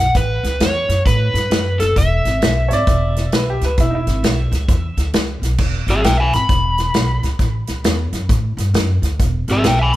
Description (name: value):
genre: electric blues shuffle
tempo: 132 BPM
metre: 4/4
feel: swing 63% on 8ths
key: E mixolydian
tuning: A4 = 440 Hz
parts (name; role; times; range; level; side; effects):
- overdriven slide guitar; melody; 0.0-9.9 s; G#4 to B5; -20 LUFS; left 1 dB; analog delay
- upright bass; bass; 0.0-10.0 s; E1 to A2; -18 LUFS; equal; none
- natural country drum kit; drums; 0.1-10.0 s; crash cymbal, hi-hat, kick drum, snare drum; -19 LUFS; equal; none
- clear upright piano; second line; 2.7-4.4 s; D#4 to D5; -21 LUFS; right 1 dB; none
room: light reverb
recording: band playing live in one room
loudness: -15 LUFS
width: side -15 dB against mid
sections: 0.0-5.6 A section; 5.6-10.0 B section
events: electric slide guitar solo 5.6-10.0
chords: 0.1 Aadd9; 2.0 E; 7.4 A5; 9.2 E